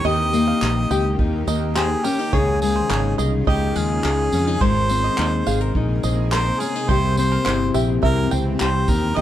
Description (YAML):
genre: acoustic pop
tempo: 105 BPM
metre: 4/4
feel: straight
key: unclear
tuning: A4 = 440 Hz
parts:
  - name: clear harmonica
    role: melody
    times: 0.0-9.2 s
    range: G4 to Eb5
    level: -24 LUFS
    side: right 1 dB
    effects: none
  - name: nylon-string guitar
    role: accompaniment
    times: 0.0-9.2 s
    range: C3 to Bb4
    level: -22 LUFS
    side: left 5 dB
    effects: none
  - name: shimmering ambient pad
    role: sustained chords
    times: 0.0-9.2 s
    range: C3 to Ab4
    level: -31 LUFS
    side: right 1 dB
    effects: chorus, built-in reverb
  - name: bluegrass banjo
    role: arpeggios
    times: 0.0-9.2 s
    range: Bb4 to G5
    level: -28 LUFS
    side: right 8 dB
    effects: none
  - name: mellow fretless electric bass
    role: bass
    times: 0.0-9.2 s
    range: G1 to F2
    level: -22 LUFS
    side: right 1 dB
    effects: lush chorus
  - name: unplugged drum kit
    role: drums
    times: 0.3-9.0 s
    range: handclaps, kick drum, tambourine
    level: -25 LUFS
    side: right 1 dB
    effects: none
room: little or no reverb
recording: dark, warm production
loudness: -17 LUFS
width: side -12 dB against mid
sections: 0.0-9.2 A section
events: none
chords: 0.0 Eb; 2.3 Dbadd9; 4.6 Abadd9; 6.9 C